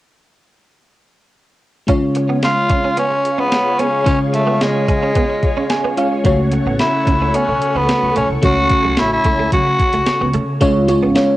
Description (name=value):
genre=1980s-style pop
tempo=110 BPM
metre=4/4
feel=straight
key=unclear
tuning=A4 = 440 Hz
part: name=FM electric piano with soft pad layer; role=accompaniment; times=1.9-11.4 s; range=C#3 to G#5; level=-18 LUFS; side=equal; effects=chorus, phaser
part: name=string machine, cellos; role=sustained chords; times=1.9-10.6 s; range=G#4 to C#6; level=-26 LUFS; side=equal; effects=phaser, ensemble chorus, plate reverb
part: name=direct-recorded clean electric guitar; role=riff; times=1.9-11.2 s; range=F#3 to C#4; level=-24 LUFS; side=right 4 dB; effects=ensemble chorus
part: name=clean 12-bit digital drum machine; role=drums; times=1.9-11.3 s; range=hi-hat, kick drum, snare drum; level=-19 LUFS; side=equal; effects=cassette tape
part: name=raspy tenor saxophone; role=melody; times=2.4-10.3 s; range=G#3 to F#4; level=-17 LUFS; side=equal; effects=cassette tape, analog delay
part: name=upright bass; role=bass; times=6.2-11.1 s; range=G#1 to C#3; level=-22 LUFS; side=equal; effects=none
room=moderate studio reverb, RT60 0.5 s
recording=home recording on cassette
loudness=-13 LUFS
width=side -16 dB against mid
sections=1.9-10.6 A section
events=FM electric piano fill 5.4-6.2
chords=1.9 C#; 6.2 F#m; 10.6 C#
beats=| 1.89 2.43 2.98 3.52 | 4.07 4.61 5.16 5.70 | 6.25 6.79 7.34 7.88 | 8.43 8.98 9.52 10.07 | 10.61 11.16